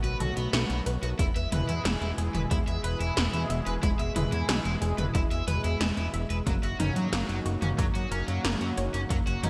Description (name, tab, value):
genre	synthwave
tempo	91 BPM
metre	4/4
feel	straight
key	unclear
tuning	A4 = 440 Hz
part	chorused pulse-width pad	sustained chords	0.0-9.5 s	B2 to G#4	-37 LUFS	equal	sidechain pumping
part	analog pluck	arpeggios	0.0-9.5 s	G#3 to E5	-40 LUFS	equal	chorus, cassette tape, digital delay
part	cranked stack guitar	riff	0.0-9.5 s	F#3 to E5	-38 LUFS	equal	overdrive, subtle chorus, digital delay
part	fat analog bass	bass	0.0-9.5 s	E1 to F#2	-33 LUFS	equal	none
part	80s electronic pad drums	drums	0.0-9.5 s	hi-hat, snare drum, toms	-34 LUFS	equal	gated reverb on snare and toms, gated reverb
part	electronic kick drum	drums	1.2-9.2 s	none	-32 LUFS	equal	none
room	moderate lush hall reverb, RT60 1.7 s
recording	bright 1980s-style digital production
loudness	-28 LUFS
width	mono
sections	0.0-9.5 A section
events	none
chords	0.0 B7; 1.2 E; 6.5 F#6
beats	0.53 | 1.19 1.85 2.51 3.17 | 3.83 4.49 5.15 5.81 | 6.47 7.13 7.79 8.45 | 9.11